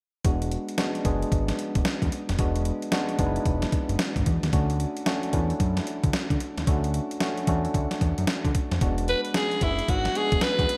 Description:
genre	R&B, new jack swing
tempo	112 BPM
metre	4/4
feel	swing 63% on 16ths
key	unclear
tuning	A4 = 440 Hz
part	bright tine electric piano	accompaniment	0.2-10.8 s	G#3 to G#4	-32 LUFS	equal	shimmer reverb
part	fat analog bass	bass	0.2-10.7 s	E1 to D3	-30 LUFS	equal	none
part	crisp 8-bit digital drum machine	drums	0.2-10.8 s	hi-hat, kick drum, snare drum	-29 LUFS	equal	overdrive, gated reverb
part	raspy alto saxophone	melody	9.1-10.8 s	E4 to B4	-27 LUFS	equal	shimmer reverb
room	moderate plate reverb, RT60 1.8 s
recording	bright 1980s-style digital production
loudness	-26 LUFS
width	mono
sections	0.2-8.8 A section; 8.8-10.8 B section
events	none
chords	0.2 E7; 4.5 Dmaj9; 8.8 E7

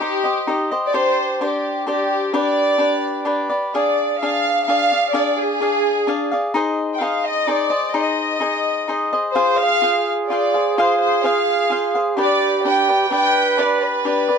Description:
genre	mexican folk, mariachi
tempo	128 BPM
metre	3/4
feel	straight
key	unclear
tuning	A4 = 437 Hz
part	rich chamber violin section	melody	0.0-14.4 s	G4 to G5	-19 LUFS	equal	none
part	cavaquinho	accompaniment	0.0-14.4 s	D4 to F5	-21 LUFS	left 1 dB	none
part	mellow trumpet	second line	9.4-14.2 s	G4 to B4	-21 LUFS	right 4 dB	slapback echo
room	light reverb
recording	dark, warm production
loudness	-16 LUFS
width	side -6 dB against mid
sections	0.0-14.4 A section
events	none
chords	0.0 Cm; 0.9 Gsus4; 2.3 G; 3.7 Ddim; 6.5 Ab; 9.4 Fm; 12.2 G

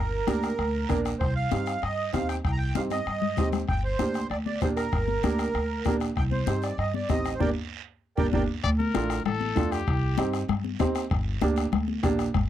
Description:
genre	latin, cumbia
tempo	194 BPM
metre	4/4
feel	straight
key	G minor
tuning	A4 = 440 Hz
part	accordion	melody	0.0-8.4 s	Bb4 to Bb5	-30 LUFS	right 4 dB	light tremolo tuning
part	upright bass	bass	0.0-12.5 s	G1 to G2	-30 LUFS	equal	none
part	warm upright piano	accompaniment	0.3-12.3 s	A3 to Bb4	-29 LUFS	right 4 dB	none
part	bombo	percussion	0.3-12.5 s	none	-30 LUFS	left 2 dB	none
part	congas	percussion	0.3-12.5 s	none	-32 LUFS	left 11 dB	none
part	guiro	percussion	0.3-12.5 s	none	-44 LUFS	right 14 dB	none
part	bright trumpet	second line	8.6-10.3 s	G4 to D5	-31 LUFS	left 7 dB	none
room	little or no reverb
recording	dry, close 1970s-style studio recording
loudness	-24 LUFS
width	side -11 dB against mid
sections	0.0-8.6 A section; 8.6-12.5 B section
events	drum fill 2.9-3.7, 8.0-8.6; band accent 7.4-8.6; trumpet solo 8.6-12.5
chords	0.0 Gm; 1.2 Cm; 3.7 Gm; 6.2 Cm; 7.4 Gm; 8.6 Dm; 9.9 Cm; 11.1 Gm

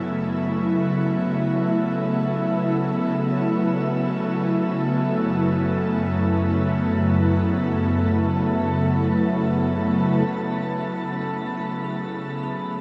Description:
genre	ambient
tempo	free time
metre	none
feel	none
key	F# minor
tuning	A4 = 440 Hz
part	airy breathy pad	sustained chords	0.0-12.8 s	F#2 to E4	-23 LUFS	equal	chorus
part	glass harmonica	texture	10.3-12.8 s	B5	-39 LUFS	equal	none
part	bell-like tine electric piano	arpeggios	11.1-12.8 s	C#4 to G#4	-39 LUFS	equal	delay
room	wet shimmer reverb, RT60 8.8 s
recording	none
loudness	-23 LUFS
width	mono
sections	0.0-10.3 A section; 10.3-12.8 B section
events	fade-in on tine electric piano 10.3-12.8; fade-in on glass harmonica 10.3-12.8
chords	0.0 F#m; 5.1 Aadd9/F#; 10.3 F#m

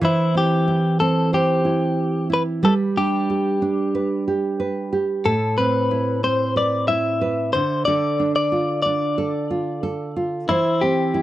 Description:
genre	pop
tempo	92 BPM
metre	4/4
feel	straight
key	unclear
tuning	A4 = 440 Hz
part	direct-recorded clean electric guitar	melody	0.0-11.2 s	E4 to E5	-21 LUFS	left 2 dB	tape echo
part	nylon-string guitar	accompaniment	0.0-11.2 s	A2 to C5	-20 LUFS	right 2 dB	none
room	light reverb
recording	dry, close 1970s-style studio recording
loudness	-18 LUFS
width	side -14 dB against mid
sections	0.0-11.2 A section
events	none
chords	0.0 C/E; 2.6 G; 5.3 Amadd9; 7.5 Dm; 10.5 C/E

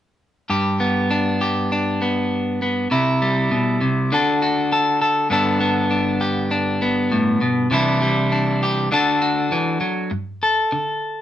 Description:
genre	highlife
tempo	100 BPM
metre	4/4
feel	straight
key	G major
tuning	A4 = 440 Hz
part	electric guitar at the edge of break-up	solo	0.5-11.2 s	G2 to A4	-17 LUFS	equal	none
room	moderate small room reverb, RT60 0.5 s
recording	band playing live in one room, nothing above 10.9 kHz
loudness	-17 LUFS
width	side -11 dB against mid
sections	0.5-10.1 A section; 10.1-11.2 B section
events	none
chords	0.5 G; 2.9 C; 4.1 D; 5.3 Gadd9; 7.7 Cadd9; 8.9 Dadd9; 10.1 Gsus2

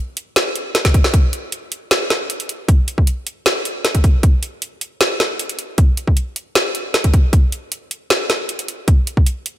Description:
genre	future bass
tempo	155 BPM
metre	4/4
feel	half-time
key	none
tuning	none
part	trap drum kit	drums	0.2-9.5 s	hi-hat, snare drum	-18 LUFS	equal	none
part	electronic kick drum	drums	0.8-9.2 s	none	-13 LUFS	equal	none
room	light reverb, digital ambience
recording	none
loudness	-15 LUFS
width	side -13 dB against mid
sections	0.0-9.6 A section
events	drum fill 0.7-1.1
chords	none

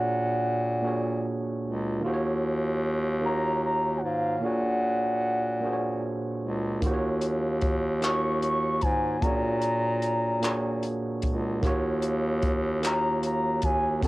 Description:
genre	slow six-eight R&B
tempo	50 BPM (dotted quarters)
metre	6/8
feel	straight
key	unclear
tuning	A4 = 438 Hz
part	gliding portamento lead	melody	0.0-14.1 s	F5 to Db6	-29 LUFS	equal	chorus, cassette tape, plate reverb
part	overdriven tine electric piano	accompaniment	0.0-14.1 s	Bb2 to C#5	-29 LUFS	right 2 dB	cassette tape, plate reverb
part	bright bass clarinet	bass	0.0-14.1 s	C#2 to Bb2	-29 LUFS	equal	none
part	compact cocktail drum kit	drums	6.8-14.1 s	handclaps, hi-hat, kick drum	-29 LUFS	equal	none
room	light reverb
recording	home recording on cassette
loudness	-24 LUFS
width	side -19 dB against mid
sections	0.0-14.1 A section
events	none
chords	0.0 Bb7alt; 2.0 Ebm9; 4.4 Bb7alt; 6.8 Ebm9; 9.2 Bb7alt; 11.6 Ebm9

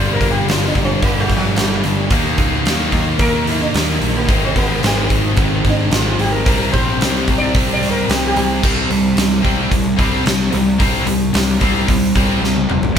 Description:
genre	quiet-loud alternative rock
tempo	110 BPM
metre	4/4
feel	straight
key	unclear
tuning	A4 = 440 Hz
part	sitar	melody	0.0-8.6 s	F3 to D5	-22 LUFS	right 1 dB	none
part	distorted electric guitar	riff	0.0-13.0 s	G2 to Eb4	-21 LUFS	right 8 dB	overdrive
part	tight distorted guitar	riff	0.0-13.0 s	G2 to E4	-20 LUFS	left 7 dB	distortion
part	fuzz picked electric bass	bass	0.0-12.9 s	F1 to Eb2	-20 LUFS	equal	overdrive
part	huge arena drum kit	drums	0.2-13.0 s	crash cymbal, hi-hat, kick drum, snare drum, toms	-18 LUFS	equal	none
room	moderate large studio reverb, RT60 1.1 s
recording	band playing live in one room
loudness	-13 LUFS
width	side -8 dB against mid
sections	0.0-8.6 A section; 8.6-13.0 B section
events	sitar solo 0.0-8.6; drum fill 12.4-13.0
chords	0.0 Gm; 2.1 Ebm; 4.3 Ab; 6.5 C; 8.6 C5

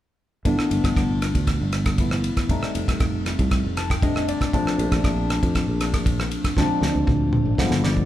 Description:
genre	electric jazz fusion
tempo	118 BPM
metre	4/4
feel	straight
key	unclear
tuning	A4 = 440 Hz
part	barky tine electric piano	accompaniment	0.4-8.1 s	D3 to A5	-24 LUFS	left 2 dB	overdrive, phaser
part	sustaining fretless electric bass	bass	0.5-8.1 s	F1 to F2	-25 LUFS	equal	none
part	damped 70s drum kit	drums	0.5-8.1 s	kick drum, ride cymbal, rim click, snare drum, toms	-23 LUFS	equal	none
room	moderate large studio reverb, RT60 1.1 s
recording	band playing live in one room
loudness	-20 LUFS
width	side -13 dB against mid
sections	0.5-8.1 A section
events	tine electric piano fill 3.5-4.5, 7.6-8.1; drum fill 6.6-8.1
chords	0.5 G69; 2.5 F9; 4.5 Bbmaj9; 6.6 Dm7b5

